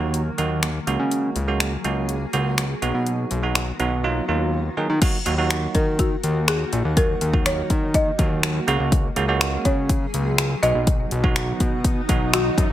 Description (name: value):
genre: dance-pop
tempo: 123 BPM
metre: 4/4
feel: straight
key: Eb minor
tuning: A4 = 438 Hz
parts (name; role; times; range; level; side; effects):
- bell-like tine electric piano; accompaniment; 0.0-12.7 s; Gb3 to D#5; -26 LUFS; right 6 dB; sidechain pumping
- granular cloud pad; sustained chords; 0.0-12.7 s; D#3 to Ab4; -32 LUFS; left 2 dB; built-in reverb, sidechain pumping
- fat analog bass; bass; 0.0-12.7 s; Bb1 to Eb3; -24 LUFS; left 1 dB; sidechain pumping
- deep house drum kit; drums; 0.1-12.7 s; crash cymbal, finger snaps, hi-hat, kick drum; -21 LUFS; left 1 dB; none
- folk marimba with medium hard mallets; melody; 5.7-12.7 s; Gb4 to Eb5; -25 LUFS; left 1 dB; dub echo
- swell; sound effects; 11.0-12.7 s; none; -32 LUFS; right 2 dB; none
room: little or no reverb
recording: none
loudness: -19 LUFS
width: side -13 dB against mid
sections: 0.0-5.0 A section; 5.0-12.7 B section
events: drums muted 4.0-5.0; swell 11.0-12.7; tine electric piano fill 12.1-12.7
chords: 0.0 Ebm; 0.9 Gbadd9/Db; 2.8 B; 4.0 Ebmadd9; 5.0 Ebm; 8.7 Gbadd9/Db; 10.6 B